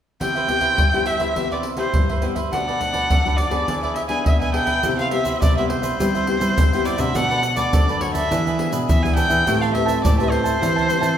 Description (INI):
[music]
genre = samba and choro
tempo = 104 BPM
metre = 4/4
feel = straight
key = C major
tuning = A4 = 440 Hz
[part]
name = rich erhu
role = melody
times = 0.2-11.2 s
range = C5 to G#5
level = -22 LUFS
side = equal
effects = none
[part]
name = cavaquinho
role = accompaniment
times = 0.2-11.2 s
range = D4 to A5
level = -27 LUFS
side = right 3 dB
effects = none
[part]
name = nylon-string guitar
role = accompaniment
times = 0.2-11.2 s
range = F#2 to B4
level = -26 LUFS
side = left 3 dB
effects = none
[part]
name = surdo, pandeiro and tube shaker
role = percussion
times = 0.2-11.2 s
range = none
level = -22 LUFS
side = equal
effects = none
[part]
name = nylon-string guitar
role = bass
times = 4.8-11.2 s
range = A2 to C4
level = -24 LUFS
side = right 1 dB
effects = none
[sound]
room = wet recital hall reverb, RT60 1.3 s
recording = recorded in a church or concert hall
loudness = -17 LUFS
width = side -9 dB against mid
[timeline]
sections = 0.2-4.8 A section; 4.8-11.2 B section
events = none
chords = 0.2 Cmaj7; 2.5 Bm7; 3.7 E7; 4.8 Cmaj7; 7.2 Bm7; 8.3 E7; 9.5 Am9